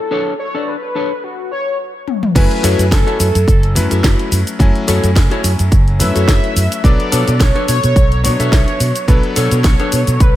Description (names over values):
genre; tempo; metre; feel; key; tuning
nu-disco, nu disco; 107 BPM; 4/4; swing 54% on 16ths; F# minor; A4 = 440 Hz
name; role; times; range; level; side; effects
wide unison lead; melody; 0.0-10.4 s; F#4 to E5; -20 LUFS; left 1 dB; lush chorus, analog delay
bright electric grand piano; accompaniment; 0.0-10.4 s; F#3 to G#5; -22 LUFS; left 2 dB; dub echo
mellow electric guitar; riff; 0.1-10.2 s; D4 to E5; -21 LUFS; left 2 dB; wide subtle chorus, dub echo
house drum kit; drums; 2.1-10.3 s; cabasa, crash cymbal, hi-hat, snare drum, toms; -21 LUFS; left 1 dB; none
fingered electric bass with an envelope filter; bass; 2.4-10.4 s; F#1 to B2; -15 LUFS; equal; none
electronic kick drum; drums; 2.4-10.3 s; none; -12 LUFS; equal; none
room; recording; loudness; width
light reverb; echo-heavy mix; -11 LUFS; side -14 dB against mid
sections
0.0-2.4 A section; 2.4-10.4 B section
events
drum fill 2.1; drop 2.4-10.4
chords
0.0 Bm9; 2.4 F#m7; 6.8 Bm9